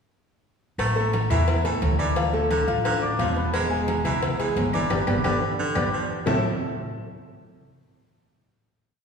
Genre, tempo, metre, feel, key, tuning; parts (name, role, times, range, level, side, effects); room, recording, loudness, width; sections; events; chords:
latin, salsa; 175 BPM; 4/4; straight; A4 = 440 Hz
bright baritone saxophone; second line; 0.8-6.4 s; A2 to A3; -30 LUFS; right 2 dB
upright bass; bass; 0.8-6.4 s; E1 to E2; -27 LUFS; equal
agogo bells and timbales; percussion; 0.8-6.3 s; -32 LUFS; right 2 dB
claves; percussion; 0.8-6.3 s; -41 LUFS; left 1 dB
congas; percussion; 0.8-6.3 s; -33 LUFS; equal
cowbell and bongos; percussion; 0.8-6.3 s; -32 LUFS; left 2 dB
clear concert grand piano; accompaniment; 1.0-6.4 s; E3 to F6; -26 LUFS; left 2 dB
wet concert hall reverb, RT60 1.9 s; recorded in a church or concert hall, small room reverb; -21 LUFS; side -6 dB against mid
0.8-6.3 montuno (vamp); 6.3-7.6 final chord
band accent 4.9-6.3; drum fill 5.8-6.3
0.8 A5; 2.2 Dm; 3.5 E7; 4.9 G; 6.3 A5